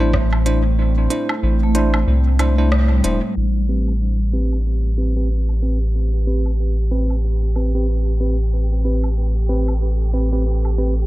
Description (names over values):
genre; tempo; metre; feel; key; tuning
ambient dub; 93 BPM; 4/4; swing 59% on 16ths; A minor; A4 = 440 Hz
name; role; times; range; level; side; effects
warbly tape-like pad; sustained chords; 0.0-11.1 s; A2 to C5; -28 LUFS; right 2 dB; chorus, built-in reverb
vibraphone with medium mallets; arpeggios; 0.0-4.3 s; G3 to A3; -28 LUFS; left 3 dB; dub echo
bell-like tine electric piano; stabs; 0.0-10.9 s; C4 to C5; -25 LUFS; right 1 dB; fast stereo tremolo, low-pass filter, dub echo
soft dub sub bass; bass; 0.0-11.1 s; E1 to C2; -17 LUFS; equal; none
organic electronic drum kit; drums; 0.1-10.8 s; hi-hat, rim click, woodblock; -28 LUFS; equal; low-pass filter on perc, low-pass filter on hats, low-pass filter on snare, dub echo
wind-like tuned noise texture; texture; 4.7-11.1 s; G4; -34 LUFS; right 5 dB; built-in reverb
room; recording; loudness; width
little or no reverb; low-pass filter; -16 LUFS; side -17 dB against mid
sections
0.0-3.4 A section; 3.4-11.1 B section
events
filter sweep on vibraphone 0.0-3.4; band accent 2.7-3.0; filter sweep on drum 3.4-11.1; filter sweep on tine electric piano 3.4-11.1; filter sweep 3.4-11.1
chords
0.0 Cadd9; 3.4 Am9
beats
0.14 | 0.78 1.43 2.07 2.72 | 3.36 4.01 4.65 5.30 | 5.94 6.59 7.23 7.88 | 8.52 9.17 9.81 10.46